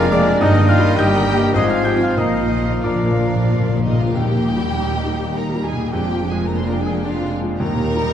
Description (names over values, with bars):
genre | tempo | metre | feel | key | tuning
classical | 88-113 BPM | 3/4 | rubato | Eb major | A4 = 439 Hz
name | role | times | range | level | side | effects
bright concert grand piano | melody | 0.0-8.1 s | Eb2 to G6 | -20 LUFS | left 1 dB | none
warm studio violin section | melody | 0.0-8.1 s | Bb4 to C6 | -32 LUFS | left 2 dB | none
bright silver concert flute | second line | 0.0-3.8 s | D5 to F5 | -29 LUFS | left 1 dB | none
warm clarinet | second line | 0.0-3.8 s | Bb4 to C5 | -28 LUFS | left 3 dB | none
warm cor anglais | second line | 0.0-3.8 s | Bb4 to Ab5 | -31 LUFS | right 1 dB | none
warm studio violin section | second line | 0.0-8.1 s | Eb4 to G5 | -28 LUFS | left 1 dB | none
mellow bassoon | accompaniment | 0.0-3.8 s | F3 to Ab3 | -28 LUFS | right 1 dB | none
warm studio viola section | accompaniment | 0.0-8.1 s | F3 to Ab4 | -26 LUFS | equal | none
mellow French horn section | sustained chords | 0.0-3.8 s | Bb3 to F4 | -25 LUFS | left 4 dB | none
clear trumpet | stabs | 0.0-3.8 s | D4 to G4 | -26 LUFS | right 1 dB | none
rich studio cello section | bass | 0.0-8.1 s | Eb2 to Bb2 | -25 LUFS | right 2 dB | none
rich studio double bass section | bass | 0.0-8.1 s | F1 to Eb2 | -25 LUFS | right 3 dB | none
timpani | percussion | 2.2-4.1, 7.6-8.1 s | Bb2 to Eb3 | -22 LUFS | left 1 dB | none
room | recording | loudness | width
wet concert hall reverb, RT60 1.8 s | dark, warm production | -15 LUFS | side -9 dB against mid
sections
0.0-4.2 A section; 4.2-8.1 B section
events
timpani fill 2.2-4.2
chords
0.4 Eb/G; 1.5 Fm7/Ab; 2.2 Bb; 4.2 Eb; 5.9 Bb7/F; 7.6 Eb